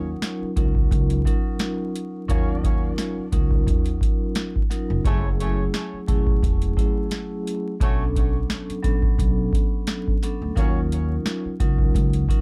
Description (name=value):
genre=hip hop, boom-bap hip-hop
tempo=87 BPM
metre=4/4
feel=swing 55% on 16ths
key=Eb minor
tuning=A4 = 440 Hz
part: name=vibraphone with soft mallets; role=accompaniment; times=0.0-12.4 s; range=Gb3 to Bb4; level=-30 LUFS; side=equal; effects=cassette tape, high-pass filter, low-pass filter
part: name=upright bass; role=bass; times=0.0-12.2 s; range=Fb1 to Eb2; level=-28 LUFS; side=equal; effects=none
part: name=booming analog drum machine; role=drums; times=0.2-12.4 s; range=hi-hat, kick drum, snare drum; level=-24 LUFS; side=equal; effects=none
part: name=dark horn section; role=stabs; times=2.3-10.8 s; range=A3 to Db5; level=-38 LUFS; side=equal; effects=high-pass filter, low-pass filter, digital delay
room=little or no reverb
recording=dark, warm production, vinyl crackle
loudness=-23 LUFS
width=mono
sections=0.0-12.4 A section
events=none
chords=0.0 Ebm9; 5.0 Gbm9; 7.8 Bm9; 10.6 Ebm9